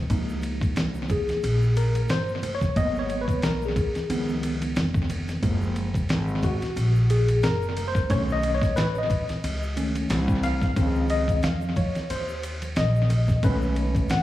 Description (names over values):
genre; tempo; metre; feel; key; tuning
hip hop, jazz-hop; 90 BPM; 4/4; swing 57% on 16ths; Db major; A4 = 440 Hz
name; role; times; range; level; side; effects
tine electric piano; accompaniment; 0.1-14.2 s; Eb3 to Gb5; -27 LUFS; left 1 dB; overdrive, fast stereo tremolo, tape echo
upright bass; bass; 0.1-14.2 s; F1 to F2; -26 LUFS; equal; none
dusty soul sampler-style drum kit; drums; 0.1-14.2 s; hi-hat, kick drum, ride cymbal, snare drum; -27 LUFS; equal; tape echo
egg shaker and congas; percussion; 0.1-14.2 s; none; -40 LUFS; right 3 dB; none
room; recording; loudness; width
light reverb; echo-heavy mix, vinyl crackle, studio reverb; -22 LUFS; side -14 dB against mid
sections
0.1-14.2 A section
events
tine electric piano solo 0.1-14.2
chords
0.1 Db69; 2.8 Abm7; 4.1 Db7; 5.4 Gbmaj7; 8.1 Cb9; 10.8 Dbmaj9; 13.4 Cb13